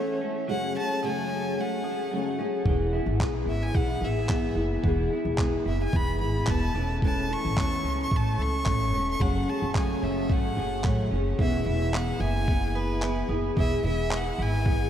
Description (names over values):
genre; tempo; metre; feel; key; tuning
acoustic pop; 110 BPM; 4/4; swing 55% on 16ths; E major; A4 = 435 Hz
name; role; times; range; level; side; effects
clear violin; melody; 0.0-14.9 s; B4 to C#6; -32 LUFS; equal; diffuse ambient delay
fingerpicked steel-string acoustic guitar; accompaniment; 0.0-14.9 s; F#2 to A4; -29 LUFS; left 1 dB; double-tracked left and right
clean electric guitar; arpeggios; 0.0-14.9 s; E3 to A4; -37 LUFS; right 3 dB; lush chorus, diffuse ambient delay
upright bass; bass; 2.7-14.9 s; E1 to E2; -29 LUFS; equal; none
dusty soul sampler-style drum kit; drums; 2.7-14.8 s; handclaps, kick drum; -28 LUFS; equal; none
room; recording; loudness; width
wet cathedral reverb, RT60 6.1 s; dreamy mix soaked in reverb; -24 LUFS; side -10 dB against mid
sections
0.0-11.4 A section; 11.4-14.9 B section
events
none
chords
0.5 F#madd9; 2.7 E; 6.7 A/E; 9.2 F#madd9; 11.4 E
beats
| 0.48 1.03 1.57 2.12 | 2.66 3.20 3.75 4.29 | 4.84 5.38 5.93 6.47 | 7.02 7.57 8.11 8.66 | 9.20 9.75 10.30 10.84 | 11.39 11.93 12.48 13.02 | 13.57 14.11 14.66